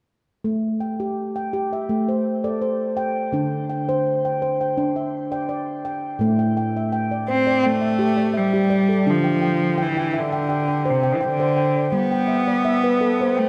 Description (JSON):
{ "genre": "world meditative", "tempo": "84 BPM", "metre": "4/4", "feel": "straight", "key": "A minor", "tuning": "A4 = 439 Hz", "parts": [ { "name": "handpan", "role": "arpeggios", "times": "0.4-13.5 s", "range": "A2 to G5", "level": "-24 LUFS", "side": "equal", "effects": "shimmer reverb" }, { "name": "rich cello", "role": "melody", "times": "7.3-13.5 s", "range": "C3 to C4", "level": "-22 LUFS", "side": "equal", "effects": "shimmer reverb" } ], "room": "wet concert hall reverb, RT60 1.6 s, small room ambience", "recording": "none", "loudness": "-21 LUFS", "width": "mono", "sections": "0.5-6.2 A section; 6.2-13.5 B section", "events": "none", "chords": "0.5 Am; 3.3 D9sus4; 6.2 Am; 9.1 Dm; 11.9 G" }